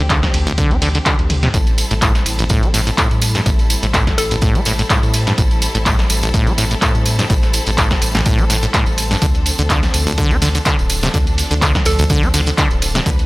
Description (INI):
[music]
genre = acid house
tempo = 125 BPM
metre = 4/4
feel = swing 54% on 16ths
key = A minor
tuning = A4 = 440 Hz
[part]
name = clear symphonic string section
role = sustained chords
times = 0.0-13.3 s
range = F3 to B4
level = -26 LUFS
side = left 1 dB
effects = sidechain pumping
[part]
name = acid bass, saw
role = riff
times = 0.0-13.1 s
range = A1 to D4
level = -20 LUFS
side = equal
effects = tube saturation, sidechain pumping, analog delay
[part]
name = round analog bass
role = bass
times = 0.0-13.3 s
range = D1 to A2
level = -20 LUFS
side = equal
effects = sidechain pumping
[part]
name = electronic kick drum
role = drums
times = 0.1-13.2 s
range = none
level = -17 LUFS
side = equal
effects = none
[part]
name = punchy analog drum machine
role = drums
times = 0.1-13.3 s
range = handclaps, hi-hat, ride cymbal, snare drum, toms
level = -20 LUFS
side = equal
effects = none
[part]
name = tambourine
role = percussion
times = 1.5-13.3 s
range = none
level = -26 LUFS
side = right 2 dB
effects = none
[part]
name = hollow square pluck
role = melody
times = 4.2-4.9, 11.9-12.5 s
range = A4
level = -23 LUFS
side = equal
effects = chorus, analog delay
[sound]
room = little or no reverb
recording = dry, gritty hardware recording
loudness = -13 LUFS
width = side -21 dB against mid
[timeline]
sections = 0.0-13.3 A section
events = drum fill 1.3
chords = 0.0 Dm7; 1.5 Am7; 9.2 Dm7